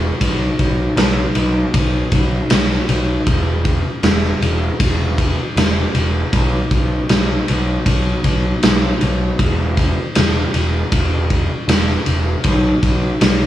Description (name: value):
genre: rock, shoegaze and dream pop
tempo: 78 BPM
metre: 4/4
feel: straight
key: unclear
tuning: A4 = 440 Hz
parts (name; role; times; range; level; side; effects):
- fuzz picked electric bass; bass; 0.0-13.5 s; E1 to B1; -17 LUFS; equal; overdrive
- raw garage drum kit; drums; 0.2-13.4 s; kick drum, ride cymbal, snare drum; -17 LUFS; equal; none
room: light reverb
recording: studio ambience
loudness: -14 LUFS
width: side -13 dB against mid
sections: 0.0-13.5 A section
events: none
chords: none